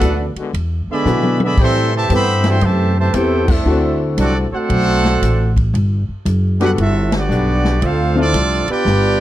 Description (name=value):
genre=jazz, big band swing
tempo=115 BPM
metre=4/4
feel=swing 66% on 8ths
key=unclear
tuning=A4 = 440 Hz
part: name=bright trumpet section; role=melody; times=0.0-9.2 s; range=B3 to C6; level=-20 LUFS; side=right 1 dB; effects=slapback echo
part: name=warm trombone section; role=second line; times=0.0-9.2 s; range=C3 to G4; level=-20 LUFS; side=right 3 dB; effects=none
part: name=bright trombone section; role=sustained chords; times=0.0-7.8 s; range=D3 to G4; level=-25 LUFS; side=left 4 dB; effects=none
part: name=upright bass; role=bass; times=0.0-9.2 s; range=F#1 to B2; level=-17 LUFS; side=equal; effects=none
part: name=swinging big-band drum kit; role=drums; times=0.0-9.0 s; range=crash cymbal, hi-hat, kick drum, ride cymbal, snare drum, toms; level=-20 LUFS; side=left 1 dB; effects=none
part: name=warm concert grand piano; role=accompaniment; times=1.1-8.3 s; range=F3 to B4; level=-19 LUFS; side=left 3 dB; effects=none
room=little or no reverb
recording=dry, close 1970s-style studio recording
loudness=-13 LUFS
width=side -14 dB against mid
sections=0.0-9.2 A section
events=drum fill 1.1-1.6, 8.9-9.2; band accent 3.4, 7.0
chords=0.0 Bm7; 0.5 E7; 1.6 Am7; 3.7 D7; 5.7 Gmaj7; 7.8 Dm7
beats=0.02 0.54 1.06 | 1.58 2.10 2.62 3.14 | 3.66 4.18 4.70 5.22 | 5.74 6.26 6.78 7.30 | 7.82 8.34 8.86